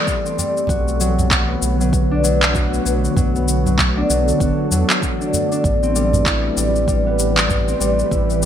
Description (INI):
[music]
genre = organic downtempo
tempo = 97 BPM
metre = 4/4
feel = swing 59% on 16ths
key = unclear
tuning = A4 = 441 Hz
[part]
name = ethereal airy pad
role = sustained chords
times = 0.0-8.5 s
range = D3 to B4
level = -22 LUFS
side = right 1 dB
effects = ensemble chorus, built-in reverb, sidechain pumping
[part]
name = concert harp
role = arpeggios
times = 0.0-8.5 s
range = F#3 to F#4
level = -20 LUFS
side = left 1 dB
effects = ping-pong delay
[part]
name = electronic cabasa and handclaps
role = drums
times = 0.1-8.5 s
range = none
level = -21 LUFS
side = equal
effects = studio reverb, gated reverb
[part]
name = electronic kick drum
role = drums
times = 0.1-8.3 s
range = none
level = -22 LUFS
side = equal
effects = studio reverb
[part]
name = udu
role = percussion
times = 0.4-8.3 s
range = none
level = -25 LUFS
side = right 2 dB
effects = none
[part]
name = warm sub bass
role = bass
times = 0.7-8.5 s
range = F#1 to E2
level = -21 LUFS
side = equal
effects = tube saturation, sidechain pumping
[sound]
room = light reverb, digital ambience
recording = bright 1980s-style digital production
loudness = -15 LUFS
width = side -9 dB against mid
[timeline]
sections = 0.0-8.5 A section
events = none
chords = 0.0 Am9; 0.7 Bm7; 5.6 Am9